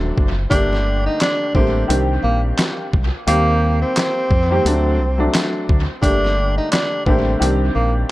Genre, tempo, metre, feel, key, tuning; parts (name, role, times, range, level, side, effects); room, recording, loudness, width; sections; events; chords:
hip hop, boom-bap hip-hop; 87 BPM; 4/4; swing 58% on 16ths; G harmonic minor; A4 = 440 Hz
dark upright piano; accompaniment; 0.0-8.1 s; D3 to G4; -21 LUFS; left 1 dB; cassette tape, high-pass filter, low-pass filter
deep dub fingered electric bass; bass; 0.0-8.0 s; Eb1 to F2; -19 LUFS; equal
boom bap sampler-style drum kit; drums; 0.2-7.6 s; handclaps, hi-hat, kick drum, snare drum; -20 LUFS; equal; dub echo
breathy tenor saxophone; melody; 0.5-7.9 s; Bb3 to Eb4; -21 LUFS; right 1 dB; high-pass filter, low-pass filter, dub echo
light reverb, small room ambience; echo-heavy mix; -15 LUFS; side -18 dB against mid
0.0-8.1 A section
0.0 D; 0.5 Gmadd9; 1.9 Cmadd9; 3.3 Eb6; 4.7 D; 6.0 Gmadd9; 7.4 Cmadd9